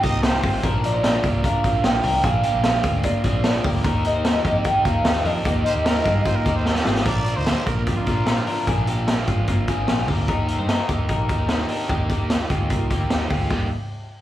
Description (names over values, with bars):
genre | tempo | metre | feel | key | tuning
jangly indie pop | 149 BPM | 4/4 | straight | Eb major | A4 = 438 Hz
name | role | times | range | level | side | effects
warbly nostalgic lead | melody | 0.0-6.9 s | D5 to G5 | -23 LUFS | equal | chorus, slapback echo, digital delay
growling trumpet | second line | 0.0-0.7, 5.7-8.7 s | F4 to Eb5 | -30 LUFS | right 2 dB | slapback echo
crunchy overdriven guitar | accompaniment | 0.0-13.7 s | Bb2 to G4 | -28 LUFS | right 5 dB | slapback echo
twelve-string electric guitar | arpeggios | 0.0-13.7 s | G3 to C5 | -28 LUFS | left 6 dB | spring reverb, slapback echo, digital delay
vintage muted fingered electric bass | bass | 0.0-13.7 s | G1 to Bb2 | -25 LUFS | equal | none
raw garage drum kit | drums | 0.0-13.6 s | crash cymbal, hi-hat, kick drum, snare drum | -22 LUFS | equal | none
room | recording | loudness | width
light reverb | live gig heard through the venue's PA, club reverb, vinyl crackle | -18 LUFS | side -13 dB against mid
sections
0.0-7.1 A section; 7.1-13.5 B section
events
drum fill 6.7-7.1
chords
0.0 Cm; 0.6 Bb; 3.8 Eb; 7.1 Bb; 10.3 Eb